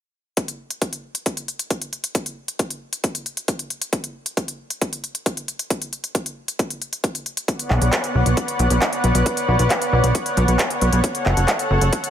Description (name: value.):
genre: uplifting trance.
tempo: 135 BPM.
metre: 4/4.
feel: straight.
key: unclear.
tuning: A4 = 437 Hz.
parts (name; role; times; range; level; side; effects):
big-room dance drum kit; drums; 0.4-12.1 s; handclaps, hi-hat; -24 LUFS; equal; overdrive, studio reverb.
electronic kick drum; drums; 0.4-12.0 s; none; -25 LUFS; equal; overdrive, high-pass filter on kick, studio reverb.
lush unison pad; sustained chords; 7.5-12.1 s; B3 to F#5; -21 LUFS; equal; chorus, sidechain pumping.
plucky analog bass; bass; 7.7-11.9 s; F#1 to B1; -17 LUFS; equal; sidechain pumping.
room: digital ambience.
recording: none.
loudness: -19 LUFS.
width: side -10 dB against mid.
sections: 0.4-12.1 A section.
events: none.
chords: 0.4 N.C.; 7.5 Bmadd9; 11.0 F#m.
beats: | 0.37 0.82 1.26 1.71 | 2.15 2.59 3.04 3.48 | 3.93 4.37 4.82 5.26 | 5.71 6.15 6.59 7.04 | 7.48 7.93 8.37 8.82 | 9.26 9.71 10.15 10.59 | 11.04 11.48 11.93.